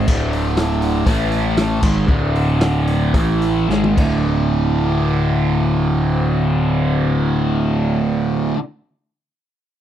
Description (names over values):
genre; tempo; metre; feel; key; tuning
psychedelic rock; 104-122 BPM; 4/4; straight; unclear; A4 = 440 Hz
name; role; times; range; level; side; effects
fuzz guitar; riff; 0.0-8.6 s; D2 to A3; -18 LUFS; right 1 dB; distortion, phaser
fuzz picked electric bass; bass; 0.0-8.5 s; D1 to A1; -20 LUFS; equal; overdrive
vintage drum kit; drums; 0.1-4.1 s; crash cymbal, hi-hat, kick drum, snare drum, toms; -20 LUFS; equal; none
room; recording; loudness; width
little or no reverb; dry, close 1970s-style studio recording; -15 LUFS; side -10 dB against mid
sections
0.0-4.3 A section; 4.3-8.9 B section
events
slowing down 0.1-4.3; drum fill 3.7-4.3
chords
0.0 D5; 1.1 A5; 1.8 D5; 3.1 A5; 3.7 G#5; 4.0 D5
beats
| 0.08 0.57 1.07 1.57 | 2.09 2.61 3.14 3.69 | 4.26 4.84 5.42 6.00 | 6.57 7.15 7.73 8.30